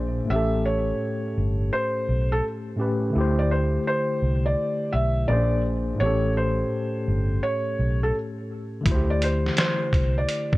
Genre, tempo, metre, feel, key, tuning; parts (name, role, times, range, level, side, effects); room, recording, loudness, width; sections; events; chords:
lo-fi hip hop; 84 BPM; 4/4; swing 65% on 16ths; A4 = 440 Hz
tine electric piano; accompaniment; 0.0-10.6 s; A2 to C5; -27 LUFS; left 1 dB; medium stereo tremolo, cassette tape, low-pass filter
vintage muted fingered electric bass; bass; 0.0-10.2 s; G1 to D2; -24 LUFS; equal
felt-muted upright piano; melody; 0.3-10.6 s; A4 to E5; -27 LUFS; equal; low-pass filter
trip hop sampler-style drum kit; drums; 8.9-10.6 s; hi-hat, kick drum, snare drum; -23 LUFS; equal
light reverb, digital ambience; cassette tape; -21 LUFS; side -19 dB against mid
0.0-10.6 A section
0.3 A7; 3.1 D7sus4; 5.3 Bb9; 6.0 A7; 8.9 D7sus4